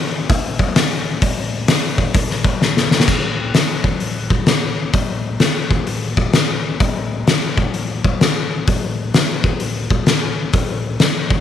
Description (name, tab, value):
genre	rock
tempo	128 BPM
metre	4/4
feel	swing 64% on 8ths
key	none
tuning	none
part	oversized low-tuned drum kit	drums	0.3-11.4 s	crash cymbal, hi-hat, kick drum, snare drum	-15 LUFS	left 2 dB	none
room	moderate plate reverb, RT60 1.2 s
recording	1960s-style stereo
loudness	-15 LUFS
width	side -10 dB against mid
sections	0.0-3.1 A section; 3.1-11.4 B section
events	drum fill 2.6-3.1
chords	none